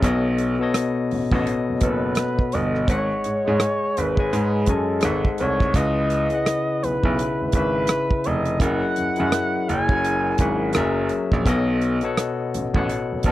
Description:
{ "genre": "R&B, neo-soul", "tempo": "84 BPM", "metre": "4/4", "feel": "swing 61% on 16ths", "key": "C# minor", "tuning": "A4 = 440 Hz", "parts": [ { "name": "barky tine electric piano", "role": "accompaniment", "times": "0.0-13.3 s", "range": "B2 to G#5", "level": "-23 LUFS", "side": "left 3 dB", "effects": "none" }, { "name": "clear grand piano", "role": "bass", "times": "0.0-13.3 s", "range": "E#1 to G#2", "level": "-25 LUFS", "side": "right 2 dB", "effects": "tube saturation" }, { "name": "damped 70s drum kit", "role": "drums", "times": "0.0-13.3 s", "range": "hi-hat, kick drum, rim click", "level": "-22 LUFS", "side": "right 1 dB", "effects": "none" }, { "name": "expressive portamento lead", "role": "melody", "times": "1.8-13.3 s", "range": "A4 to G#5", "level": "-25 LUFS", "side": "right 1 dB", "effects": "chorus" } ], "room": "small room ambience", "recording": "dry, close 1970s-style studio recording", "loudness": "-19 LUFS", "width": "side -15 dB against mid", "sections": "0.0-13.3 A section", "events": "none", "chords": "0.0 B9; 2.9 G#7sus4; 5.0 G#7b9; 5.7 C#m9; 8.6 F#13; 10.7 F#9; 11.5 B9", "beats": "| 0.03 0.74 1.46 2.17 | 2.88 3.60 4.31 5.03 | 5.74 6.46 7.17 7.88 | 8.60 9.31 10.03 10.74 | 11.46 12.17 12.88" }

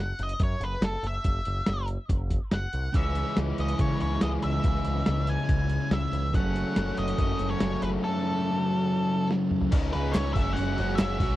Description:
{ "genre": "indie rock", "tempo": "142 BPM", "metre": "4/4", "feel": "straight", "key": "unclear", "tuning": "A4 = 442 Hz", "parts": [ { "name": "octave-fuzz lead guitar", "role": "melody", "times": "0.0-11.4 s", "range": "A4 to G#5", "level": "-33 LUFS", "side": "equal", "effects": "distortion" }, { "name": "growling picked electric bass", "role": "bass", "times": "0.0-11.4 s", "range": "F#1 to C#3", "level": "-30 LUFS", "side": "equal", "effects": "overdrive" }, { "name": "lo-fi sampler-style drum kit", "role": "drums", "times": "0.2-11.3 s", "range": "crash cymbal, hi-hat, kick drum, snare drum, toms", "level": "-26 LUFS", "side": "equal", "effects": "none" }, { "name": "overdriven electric guitar", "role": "riff", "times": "2.9-11.4 s", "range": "F#2 to F#4", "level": "-30 LUFS", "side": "left 5 dB", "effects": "none" }, { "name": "thick fuzz guitar", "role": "riff", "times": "2.9-11.4 s", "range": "F#2 to F#4", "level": "-31 LUFS", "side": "right 6 dB", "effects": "distortion, analog chorus" }, { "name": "group handclap", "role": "percussion", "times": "10.1-11.1 s", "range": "none", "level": "-44 LUFS", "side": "right 8 dB", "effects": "none" } ], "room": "little or no reverb", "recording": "dry, close 1970s-style studio recording", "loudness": "-24 LUFS", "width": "side -15 dB against mid", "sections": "0.0-9.7 A section; 9.7-11.4 B section", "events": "drum fill 9.3-9.7", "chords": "0.0 F#7(no3); 3.0 C#m; 6.3 F#m; 9.7 C#sus2; 10.4 F#sus2", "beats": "0.41 0.83 | 1.25 1.68 2.10 2.53 | 2.95 3.38 3.80 4.23 | 4.65 5.07 5.50 5.92 | 6.35 6.77 7.19 7.62 | 8.04 8.46 8.89 9.31 | 9.73 10.15 10.58 11.00" }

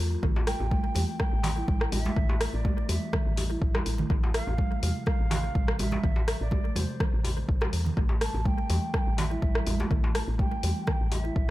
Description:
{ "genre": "afro house", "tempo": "124 BPM", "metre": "4/4", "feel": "swing 54% on 16ths", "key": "A minor", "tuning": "A4 = 441 Hz", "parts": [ { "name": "kalimba", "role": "arpeggios", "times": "0.0-11.5 s", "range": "C3 to E4", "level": "-36 LUFS", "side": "equal", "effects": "sidechain pumping, analog delay" }, { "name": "woody FM bass", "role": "bass", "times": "0.0-11.5 s", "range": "A1 to E2", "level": "-30 LUFS", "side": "equal", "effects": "sidechain pumping" }, { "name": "electronic kick drum", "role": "drums", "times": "0.2-11.5 s", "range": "none", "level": "-27 LUFS", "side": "equal", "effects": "overdrive" }, { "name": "congas", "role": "percussion", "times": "0.2-11.3 s", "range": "none", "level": "-35 LUFS", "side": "right 4 dB", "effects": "none" }, { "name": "djembe", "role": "percussion", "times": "0.4-11.2 s", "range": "none", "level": "-38 LUFS", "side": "left 2 dB", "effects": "analog delay" }, { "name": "bansuri", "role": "melody", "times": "0.5-11.5 s", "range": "C5 to A5", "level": "-38 LUFS", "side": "right 2 dB", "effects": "analog delay" }, { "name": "deep house drum kit", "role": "drums", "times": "0.5-11.2 s", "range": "hi-hat, rim click", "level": "-34 LUFS", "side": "equal", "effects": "overdrive, analog delay" } ], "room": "light reverb", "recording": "echo-heavy mix", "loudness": "-25 LUFS", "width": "side -16 dB against mid", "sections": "0.0-11.5 A section", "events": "none", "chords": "0.2 A7(no3); 4.1 F/A; 8.0 A7(no3)", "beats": "| 0.23 0.71 1.20 1.68 | 2.17 2.65 3.13 3.62 | 4.10 4.58 5.07 5.55 | 6.04 6.52 7.00 7.49 | 7.97 8.46 8.94 9.42 | 9.91 10.39 10.88 11.36" }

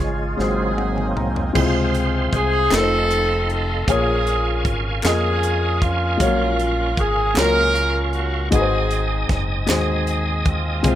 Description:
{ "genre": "slow gospel", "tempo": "52 BPM (dotted quarters)", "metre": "6/8", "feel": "straight", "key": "unclear", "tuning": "A4 = 440 Hz", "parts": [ { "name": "dark upright piano", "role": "accompaniment", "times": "0.0-11.0 s", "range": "Ab2 to Bb5", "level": "-24 LUFS", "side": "left 3 dB", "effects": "none" }, { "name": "bright tonewheel organ", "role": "sustained chords", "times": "0.0-11.0 s", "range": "Db3 to Eb6", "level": "-26 LUFS", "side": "right 2 dB", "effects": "fast rotary speaker, chorus vibrato" }, { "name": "hand-pumped harmonium", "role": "sustained chords", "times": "0.0-1.5 s", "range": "Ab4 to Ab5", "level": "-34 LUFS", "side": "right 3 dB", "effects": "none" }, { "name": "fingered electric bass with an envelope filter", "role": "bass", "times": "0.0-11.0 s", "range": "F1 to F2", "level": "-23 LUFS", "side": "equal", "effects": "none" }, { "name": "warm horn section", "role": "melody", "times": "0.4-11.0 s", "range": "Ab3 to Bb4", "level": "-22 LUFS", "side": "equal", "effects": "tape echo" }, { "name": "tight funk drum kit", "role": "drums", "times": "0.4-11.0 s", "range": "crash cymbal, hi-hat, kick drum, snare drum, toms", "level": "-24 LUFS", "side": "equal", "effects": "none" }, { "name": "group handclap", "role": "percussion", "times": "2.7-10.0 s", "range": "none", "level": "-26 LUFS", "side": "left 2 dB", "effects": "none" } ], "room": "little or no reverb", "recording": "rough home demo mix", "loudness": "-17 LUFS", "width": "side -12 dB against mid", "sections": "0.0-1.5 A section; 1.5-11.0 B section", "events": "tonewheel organ solo 0.0-1.5; drum fill 0.4-1.5; upright piano fill 0.4-1.5", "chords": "0.4 Ab7; 1.5 Dbmaj7; 2.7 F7; 3.9 Bbm7; 6.2 Gbmaj7; 8.5 Ab7", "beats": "0.38 | 1.55 2.71 | 3.87 5.04 | 6.20 7.36 | 8.52 9.68 | 10.85" }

